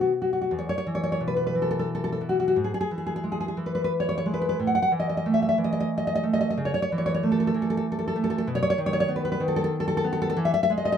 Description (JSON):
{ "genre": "romantic piece for solo classical guitar", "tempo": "71-98 BPM", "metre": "3/4", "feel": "rubato", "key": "E major", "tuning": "A4 = 445 Hz", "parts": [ { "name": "nylon-string guitar", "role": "solo", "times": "0.0-11.0 s", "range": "E2 to F#5", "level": "-23 LUFS", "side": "equal", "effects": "none" } ], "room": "light reverb", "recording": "band playing live in one room", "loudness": "-23 LUFS", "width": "side -8 dB against mid", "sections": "0.5-11.0 A section", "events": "none", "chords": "0.0 B; 0.5 E5; 2.6 E/G#; 4.6 A5; 6.6 A/C#; 8.5 B; 10.4 E" }